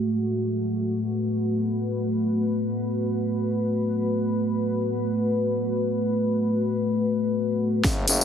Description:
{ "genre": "bass house", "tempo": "free time", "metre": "none", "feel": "none", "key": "F# minor", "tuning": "A4 = 440 Hz", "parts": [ { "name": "deep dark ambient pad", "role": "sustained chords", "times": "0.0-8.2 s", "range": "A3 to B4", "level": "-23 LUFS", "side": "left 1 dB", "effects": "chorus, built-in reverb, sidechain pumping" }, { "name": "growling FM bass", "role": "bass", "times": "7.8-8.2 s", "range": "F#1", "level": "-26 LUFS", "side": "equal", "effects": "overdrive, sidechain pumping, high-pass filter" }, { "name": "electronic kick drum", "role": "drums", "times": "7.8-8.0 s", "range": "none", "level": "-25 LUFS", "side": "equal", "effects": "studio reverb" }, { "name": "garage drum kit", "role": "drums", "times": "7.8-8.2 s", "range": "hi-hat, snare drum, tambourine", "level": "-22 LUFS", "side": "left 1 dB", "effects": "overdrive, studio reverb" } ], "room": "moderate lush hall reverb, RT60 1.9 s", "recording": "dense, heavily limited modern master", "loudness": "-23 LUFS", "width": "side -8 dB against mid", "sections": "0.0-7.8 A section", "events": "filter sweep on ambient pad 0.0-7.8; drum fill 7.8-8.2", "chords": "0.0 F#m", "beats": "free time" }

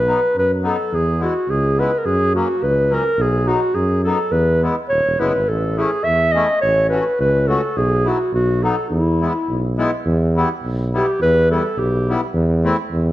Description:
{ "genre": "alpine folk, alpine dance band", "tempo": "105 BPM", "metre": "2/4", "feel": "straight", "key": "E major, E minor from 10.1 s", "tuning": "A4 = 437 Hz", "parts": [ { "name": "dark clarinet", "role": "melody", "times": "0.0-12.2 s", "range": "E4 to E5", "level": "-18 LUFS", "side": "equal", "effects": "none" }, { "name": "warm tuba", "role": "bass", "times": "0.0-13.1 s", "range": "D#1 to F#2", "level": "-20 LUFS", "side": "equal", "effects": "none" }, { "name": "accordion", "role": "accompaniment", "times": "0.1-12.8 s", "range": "F#3 to F#4", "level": "-24 LUFS", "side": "left 3 dB", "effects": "none" } ], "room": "moderate recital hall reverb, RT60 1.7 s", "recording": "dark, warm production", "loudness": "-15 LUFS", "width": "side -15 dB against mid", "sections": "0.0-10.1 A section; 10.1-13.1 B section", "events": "none", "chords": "0.0 B; 0.9 E6; 2.1 F#; 3.2 B; 4.3 E; 5.5 A; 6.6 F#m/A; 7.8 Bsus4; 8.3 B7; 8.9 E; 10.1 Em; 12.3 Am/E", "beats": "0.35 | 0.93 1.50 | 2.07 2.64 | 3.20 3.76 | 4.33 4.91 | 5.49 6.06 | 6.63 7.20 | 7.77 8.33 | 8.90 9.48 | 10.06 10.64 | 11.21 11.78 | 12.35 12.91" }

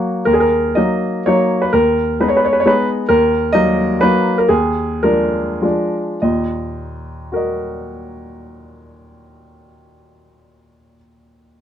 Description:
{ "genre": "classical, romantic triple-time dance for piano with dotted rhythms", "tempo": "91-143 BPM", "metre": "3/4", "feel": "rubato", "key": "Eb minor", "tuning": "A4 = 440 Hz", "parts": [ { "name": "clear baby grand piano", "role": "solo", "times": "0.0-11.6 s", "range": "Eb2 to Eb5", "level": "-14 LUFS", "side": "equal", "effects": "none" } ], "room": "moderate studio reverb, RT60 0.6 s", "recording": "dark, warm production", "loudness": "-13 LUFS", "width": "side -10 dB against mid", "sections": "0.3-6.2 A section; 6.2-9.5 B section", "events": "slowing down 2.4-6.2", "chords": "0.3 Ebm; 1.7 Abm/Eb; 3.1 Ebm; 4.5 Bb7/Eb; 6.2 Ebm", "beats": "| 0.27 0.76 1.26 | 1.73 2.19 2.66 | 3.10 3.55 4.03 | 4.51 5.04 5.62 | 6.23 6.76 7.32 | 7.85 8.40 8.96" }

